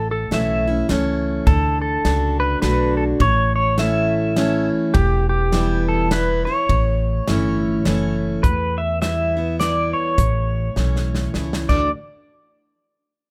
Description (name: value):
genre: honky-tonk and classic country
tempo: 103 BPM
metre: 3/4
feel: swing 61% on 8ths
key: unclear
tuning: A4 = 440 Hz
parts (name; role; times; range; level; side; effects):
- pedal steel guitar; melody; 0.0-11.9 s; G4 to E5; -24 LUFS; equal; plate reverb
- picked steel-string acoustic guitar; accompaniment; 0.0-11.9 s; E2 to F#4; -25 LUFS; equal; none
- upright bass; bass; 0.0-11.9 s; E1 to E2; -24 LUFS; equal; none
- natural country drum kit; drums; 0.3-11.8 s; crash cymbal, hi-hat, kick drum, ride cymbal, snare drum; -24 LUFS; equal; none
room: light reverb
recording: rough home demo mix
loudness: -19 LUFS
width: mono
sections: 0.0-8.4 A section; 8.4-11.9 B section; 11.9-13.3 C section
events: drum fill 10.8-11.9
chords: 0.0 A; 1.5 D; 3.2 A; 5.0 Em; 6.7 A; 8.4 Em; 10.2 A; 11.6 D; 11.9 N.C.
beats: 0.31 0.89 | 1.47 2.05 2.63 | 3.21 3.79 4.37 | 4.95 5.53 6.11 | 6.69 7.28 7.86 | 8.44 9.02 9.60 | 10.18 10.76 11.35